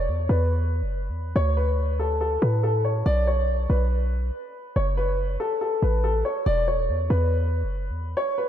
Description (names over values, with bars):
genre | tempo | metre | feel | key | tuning
hip hop | 141 BPM | 4/4 | half-time | unclear | A4 = 441 Hz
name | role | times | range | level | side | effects
dark grand piano | melody | 0.0-8.5 s | A4 to D5 | -26 LUFS | left 1 dB | ping-pong delay
warm 808-style bass | bass | 0.0-8.2 s | E1 to A2 | -23 LUFS | equal | none
room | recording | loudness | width
moderate lush hall reverb, RT60 2.8 s | dreamy mix soaked in reverb | -22 LUFS | side -10 dB against mid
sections
0.0-8.5 A section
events
none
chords
0.0 E5; 1.4 D5; 3.1 Bsus2; 4.8 F#m; 6.5 E5